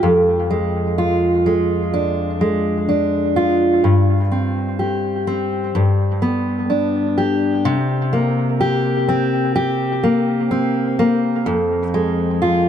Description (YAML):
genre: pop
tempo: 63 BPM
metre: 4/4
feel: straight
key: unclear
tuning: A4 = 440 Hz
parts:
  - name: fingerpicked steel-string acoustic guitar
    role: solo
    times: 0.0-12.7 s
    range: F2 to G4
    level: -16 LUFS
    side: equal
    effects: dub echo
room: wet spring reverb, RT60 1.8 s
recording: echo-heavy mix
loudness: -16 LUFS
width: side -9 dB against mid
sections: 0.0-7.7 A section; 7.7-12.7 B section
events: none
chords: 0.0 Ddim/F; 3.8 Gsus4; 5.7 G; 7.7 C5; 11.5 Fm